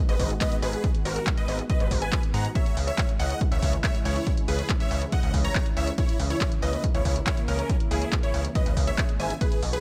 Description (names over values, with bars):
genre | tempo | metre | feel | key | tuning
uplifting trance | 140 BPM | 4/4 | straight | unclear | A4 = 443 Hz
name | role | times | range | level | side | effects
lush unison pad | sustained chords | 0.1-9.8 s | B2 to F#4 | -38 LUFS | equal | chorus, sidechain pumping
supersaw chords | melody | 0.1-9.8 s | C#4 to A#5 | -35 LUFS | equal | phaser, sidechain pumping, delay
unison pluck | second line | 0.1-9.8 s | G#4 to A#5 | -39 LUFS | equal | sidechain pumping, delay
gritty driven synth bass | bass | 0.1-9.8 s | G#1 to G#2 | -30 LUFS | equal | distortion, tube saturation, sidechain pumping
punchy analog drum machine | drums | 0.1-9.8 s | handclaps, hi-hat | -35 LUFS | equal | sidechain pumping on hats, sidechain pumping on cymbals
electronic kick drum | drums | 0.2-9.5 s | none | -28 LUFS | equal | none
swell | sound effects | 8.9-9.4 s | none | -47 LUFS | equal | none
room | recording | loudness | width
little or no reverb | none | -25 LUFS | mono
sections
0.0-9.8 A section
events
none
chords
0.0 G#m; 2.6 C#m